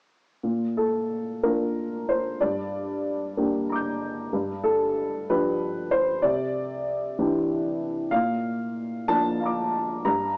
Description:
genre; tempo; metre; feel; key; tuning
neoclassical minimalist piano; 62 BPM (dotted quarters); 6/8; rubato; unclear; A4 = 440 Hz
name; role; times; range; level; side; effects
dark upright piano; solo; 0.4-10.4 s; G2 to G6; -23 LUFS; equal; none
room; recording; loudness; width
moderate small room reverb, RT60 0.6 s; home recording on cassette, small speaker sound; -23 LUFS; side -35 dB against mid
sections
0.4-10.4 A section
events
none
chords
0.4 Bb; 2.4 Gm; 4.3 G7; 6.2 Cadd9; 8.1 Bb

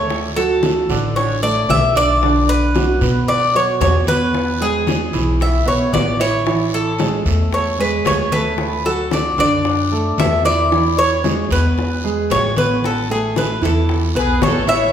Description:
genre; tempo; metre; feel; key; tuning
latin, Cuban son and guajira; 113 BPM; 4/4; straight; A major; A4 = 440 Hz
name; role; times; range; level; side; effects
Cuban tres; melody; 0.0-14.9 s; G#4 to E5; -18 LUFS; equal; none
warm grand piano; arpeggios; 0.0-14.9 s; D3 to E5; -20 LUFS; right 2 dB; none
upright bass; bass; 0.0-14.9 s; A1 to B2; -21 LUFS; equal; none
bongos; percussion; 0.1-14.9 s; none; -26 LUFS; left 4 dB; none
congas; percussion; 0.1-14.9 s; none; -26 LUFS; left 1 dB; none
guiro; percussion; 0.1-14.9 s; none; -31 LUFS; right 4 dB; none
rich studio violin section; second line; 14.2-14.9 s; G#4 to C#5; -20 LUFS; left 3 dB; none
room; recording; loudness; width
wet recital hall reverb, RT60 1.6 s; recorded in a church or concert hall; -14 LUFS; side -9 dB against mid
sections
0.0-14.9 A section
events
none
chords
0.1 D; 2.2 Bm; 4.3 E; 6.5 A5; 8.6 D; 10.7 E; 12.8 Asus2

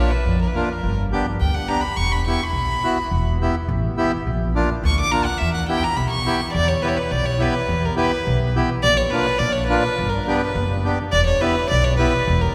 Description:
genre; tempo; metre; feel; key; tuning
klezmer; 105 BPM; 2/4; straight; E dorian sharp4; A4 = 441 Hz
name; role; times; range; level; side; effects
clear violin; melody; 0.0-12.5 s; A#4 to D6; -24 LUFS; equal; none
accordion; accompaniment; 0.0-12.1 s; A#3 to G4; -26 LUFS; equal; none
upright bass; bass; 0.0-12.4 s; E1 to E#2; -24 LUFS; equal; none
room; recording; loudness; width
wet cathedral reverb, RT60 4.7 s; recorded in a church or concert hall; -20 LUFS; mono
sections
0.0-6.5 A section; 6.5-12.5 B section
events
violin solo 0.0-6.5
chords
0.0 A#; 0.8 G; 2.0 Em; 4.3 A#; 5.4 Em; 8.8 A#; 10.0 G; 11.1 Em

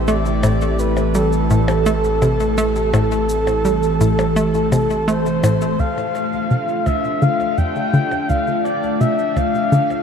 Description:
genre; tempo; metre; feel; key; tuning
ambient, sequencer-driven space music; 84 BPM; 4/4; straight; A minor, D minor from 5.8 s; A4 = 435 Hz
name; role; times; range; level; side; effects
breathy flute-like synth lead; melody; 0.0-10.0 s; A4 to G5; -20 LUFS; equal; lush chorus, shimmer reverb, ping-pong delay
sweeping resonant pad; sustained chords; 0.0-10.0 s; E3 to A5; -21 LUFS; equal; chorus
warm sub bass; bass; 0.0-5.8 s; A1; -23 LUFS; equal; none
hollow square pluck; riff; 0.1-9.8 s; D2 to A3; -20 LUFS; left 1 dB; chorus, ping-pong delay
cabasa and percussion blips; percussion; 0.1-10.0 s; none; -31 LUFS; left 2 dB; ping-pong delay
room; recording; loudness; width
wet huge ambient reverb, RT60 8.3 s; cassette tape; -15 LUFS; side -7 dB against mid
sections
0.0-5.8 A section; 5.8-10.0 B section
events
filter sweep on synth arpeggio sound 5.8-10.0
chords
0.0 Am7; 5.8 Dm

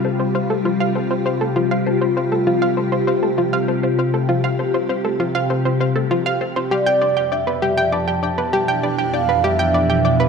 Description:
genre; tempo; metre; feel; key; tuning
ambient, sequencer-driven space music; 99 BPM; 4/4; straight; F lydian; A4 = 440 Hz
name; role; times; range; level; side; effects
evolving wavetable pad; sustained chords; 0.0-10.3 s; F2 to G4; -19 LUFS; left 1 dB; ensemble chorus, built-in reverb, phaser
analog pluck; riff; 0.0-10.3 s; F4 to G5; -21 LUFS; equal; chorus, ping-pong delay
mellow horn-like synth lead; melody; 6.7-10.3 s; D5 to A5; -19 LUFS; right 2 dB; chorus, ping-pong delay
room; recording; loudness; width
wet echo chamber reverb, RT60 2.3 s; echo-heavy mix; -16 LUFS; side -5 dB against mid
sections
0.0-10.3 A section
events
none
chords
0.0 Fsus2; 6.7 G6/F

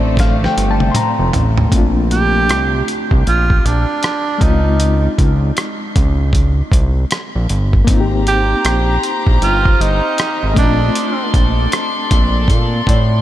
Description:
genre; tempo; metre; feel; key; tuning
R&B, neo-soul; 78 BPM; 4/4; swing 63% on 16ths; Bb major; A4 = 440 Hz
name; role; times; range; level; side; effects
reed electric piano; accompaniment; 0.0-13.2 s; D3 to C6; -21 LUFS; left 4 dB; fast tremolo
warm studio string section; sustained chords; 0.0-1.7, 7.9-13.2 s; D3 to C6; -23 LUFS; left 2 dB; none
fat analog bass; bass; 0.0-13.2 s; F1 to Bb2; -15 LUFS; equal; none
dusty soul sampler-style drum kit; drums; 0.2-13.1 s; hi-hat, kick drum, rim click, snare drum, toms; -17 LUFS; equal; none
breathy tenor saxophone; melody; 2.1-11.3 s; D4 to G4; -19 LUFS; right 4 dB; diffuse ambient delay
room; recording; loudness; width
moderate huge ambient reverb, RT60 7.5 s; dreamy mix soaked in reverb; -12 LUFS; side -13 dB against mid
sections
0.0-1.7 A section; 1.7-13.2 B section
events
reed electric piano solo 0.0-1.7; drum fill 0.2-1.7; reed electric piano fill 12.5-13.2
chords
0.0 Bbmaj9; 4.4 Dbmaj9; 7.9 Abmaj9; 10.6 Bbmaj9

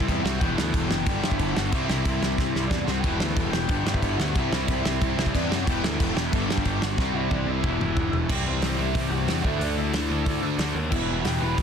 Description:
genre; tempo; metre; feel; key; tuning
punk rock; 182 BPM; 4/4; straight; unclear; A4 = 440 Hz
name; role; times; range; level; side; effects
lead guitar through a small cranked amp; melody; 0.0-11.6 s; C4 to B5; -32 LUFS; equal; overdrive, tape echo
crunchy overdriven guitar; riff; 0.0-11.6 s; E2 to D4; -32 LUFS; equal; none
distorted electric guitar; riff; 0.0-11.6 s; G2 to G4; -31 LUFS; left 11 dB; distortion
distorted electric guitar; riff; 0.0-11.6 s; E2 to D4; -31 LUFS; right 11 dB; distortion
fuzz picked electric bass; bass; 0.0-11.6 s; E1 to G2; -29 LUFS; equal; overdrive
loose indie drum kit; drums; 0.0-11.6 s; crash cymbal, hi-hat, kick drum, snare drum, toms; -27 LUFS; equal; none
room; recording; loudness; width
light reverb, small room ambience; dense, heavily limited modern master; -22 LUFS; side -7 dB against mid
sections
0.0-8.3 A section; 8.3-11.6 B section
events
drum fill 2.4-3.0, 7.0-8.3; half time 8.3-11.6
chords
0.4 Em; 1.1 G; 1.7 C; 3.0 Em; 3.7 G; 4.4 C; 5.7 Em; 6.3 G; 7.0 C; 7.6 Em; 8.3 C; 9.4 D; 10.9 Em

